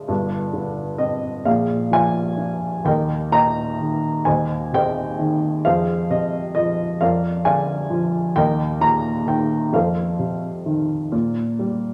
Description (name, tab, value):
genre	classical, lyrical solo piano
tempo	43 BPM (dotted quarters)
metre	6/8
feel	rubato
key	Eb major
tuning	A4 = 436 Hz
part	dark upright piano	solo	0.0-11.9 s	G1 to Bb5	-21 LUFS	equal	none
room	wet recital hall reverb, RT60 1.5 s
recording	none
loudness	-21 LUFS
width	mono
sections	0.0-2.9 A section; 2.9-11.9 B section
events	none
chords	0.1 Gsus4; 1.5 Bb7; 2.9 Eb; 4.3 Eb6; 5.7 Fm; 7.0 Bb/F; 8.4 Eb5; 9.7 F7; 11.1 Gm11/Bb